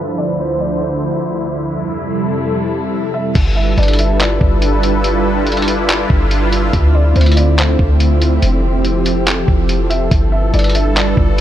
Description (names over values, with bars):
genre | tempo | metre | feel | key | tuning
hip hop, atmospheric cloud-rap | 142 BPM | 4/4 | half-time | unclear | A4 = 440 Hz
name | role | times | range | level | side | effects
sweeping resonant pad | sustained chords | 0.0-11.4 s | D2 to C5 | -16 LUFS | right 1 dB | chorus, sidechain pumping
felt-muted upright piano | melody | 0.2-11.4 s | C5 to E5 | -25 LUFS | left 1 dB | low-pass filter, ping-pong delay
clean 808-style bass | bass | 3.4-11.4 s | F1 to D2 | -14 LUFS | equal | none
lo-fi sampler-style drum kit | drums | 3.4-11.4 s | crash cymbal, handclaps, hi-hat, kick drum | -18 LUFS | equal | none
room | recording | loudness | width
digital ambience | low-pass filter | -12 LUFS | side -11 dB against mid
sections
0.0-3.4 A section; 3.4-11.4 B section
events
filter sweep 0.0-3.4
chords
0.0 Dm7; 1.7 Fmaj7; 3.4 G13; 6.7 Dm7; 8.4 Fmaj7; 10.1 G13